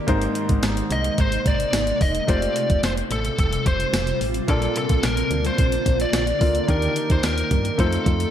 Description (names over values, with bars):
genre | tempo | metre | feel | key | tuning
1980s-style pop | 109 BPM | 4/4 | straight | Bb major | A4 = 440 Hz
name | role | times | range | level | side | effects
clear concert grand piano | accompaniment | 0.0-8.3 s | Ab2 to A5 | -27 LUFS | left 1 dB | none
granular cloud pad | sustained chords | 0.0-8.3 s | C3 to F4 | -28 LUFS | equal | built-in reverb
solid FM bass | bass | 0.1-8.3 s | E1 to G2 | -26 LUFS | equal | none
clean 12-bit digital drum machine | drums | 0.1-8.3 s | hi-hat, kick drum, snare drum, tambourine | -23 LUFS | equal | none
biting lead guitar | melody | 0.9-8.3 s | A4 to Eb5 | -25 LUFS | equal | overdrive, diffuse ambient delay
room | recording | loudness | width
moderate plate reverb, RT60 1.9 s, digital ambience | dreamy mix soaked in reverb | -19 LUFS | side -10 dB against mid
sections
0.0-8.3 A section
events
none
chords
0.1 Abadd9; 2.3 Fadd9; 4.5 Bbmaj7; 6.7 Ebmaj7; 7.8 F7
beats
| 0.08 0.63 1.18 1.73 | 2.28 2.83 3.38 3.93 | 4.48 5.03 5.58 6.13 | 6.69 7.24 7.79